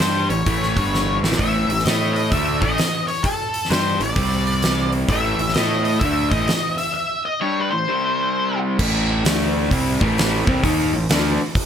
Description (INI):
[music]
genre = blues rock power trio and southern rock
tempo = 130 BPM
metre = 4/4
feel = swing 65% on 8ths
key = unclear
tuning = A4 = 440 Hz
[part]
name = octave-fuzz lead guitar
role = melody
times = 0.0-8.6 s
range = A4 to E5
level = -22 LUFS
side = left 2 dB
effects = distortion
[part]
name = raw garage guitar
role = riff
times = 0.0-11.4 s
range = G2 to A4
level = -22 LUFS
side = equal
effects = overdrive, spring reverb
[part]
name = fuzz fingered electric bass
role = bass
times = 0.0-11.4 s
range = G1 to A2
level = -24 LUFS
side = equal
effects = overdrive
[part]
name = huge arena drum kit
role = drums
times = 0.0-11.7 s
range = crash cymbal, hi-hat, kick drum, snare drum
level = -22 LUFS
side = right 1 dB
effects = none
[sound]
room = light reverb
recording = none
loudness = -17 LUFS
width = side -8 dB against mid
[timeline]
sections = 0.0-8.8 A section; 8.8-11.7 B section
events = drum fill 0.9-1.4; break 6.9-8.8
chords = 0.0 A; 0.7 G5; 1.1 A5; 4.2 C5; 5.1 A5; 7.9 C5; 8.8 A5; 9.2 D5; 9.7 A5